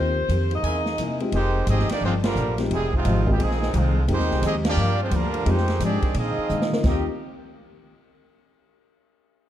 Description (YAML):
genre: jazz, big band swing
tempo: 174 BPM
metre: 4/4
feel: swing 64% on 8ths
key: Eb major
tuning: A4 = 440 Hz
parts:
  - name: clear saxophone section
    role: melody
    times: 0.0-1.2 s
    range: C5 to Eb5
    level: -28 LUFS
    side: left 3 dB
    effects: none
  - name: picked steel-string acoustic guitar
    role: accompaniment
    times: 0.0-7.0 s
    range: G2 to G#4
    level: -30 LUFS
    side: left 4 dB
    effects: none
  - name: warm upright piano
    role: accompaniment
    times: 0.0-7.0 s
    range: G#3 to Bb4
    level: -30 LUFS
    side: left 3 dB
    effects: none
  - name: upright bass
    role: bass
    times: 0.0-7.0 s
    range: F1 to D3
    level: -23 LUFS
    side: equal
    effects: none
  - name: swinging big-band drum kit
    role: drums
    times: 0.3-6.9 s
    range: crash cymbal, hi-hat, kick drum, ride cymbal, snare drum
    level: -28 LUFS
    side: equal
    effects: none
  - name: muted trombone section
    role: second line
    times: 0.5-7.0 s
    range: F2 to G4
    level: -29 LUFS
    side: right 3 dB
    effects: none
  - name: bright trumpet section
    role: stabs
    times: 0.6-0.8 s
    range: E4 to G#5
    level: -38 LUFS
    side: right 2 dB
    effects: none
  - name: clear trumpet section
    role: melody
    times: 1.3-7.1 s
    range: G3 to Eb5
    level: -28 LUFS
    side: right 1 dB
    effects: none
room: light reverb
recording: dark, warm production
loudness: -20 LUFS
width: side -11 dB against mid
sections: 0.0-1.3 A section; 1.3-6.8 B section; 6.8-8.2 C section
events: break 1.0-1.3; band accent 2.2, 4.6; drum fill 6.5-6.8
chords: 0.0 Eb6; 0.6 C7alt; 1.3 Fm9; 2.0 Gm7; 2.7 Fm9; 3.4 Bb9sus4; 4.1 Fm9; 4.8 Gm7; 5.5 Fm9; 6.2 Bb9sus4; 6.8 Eb6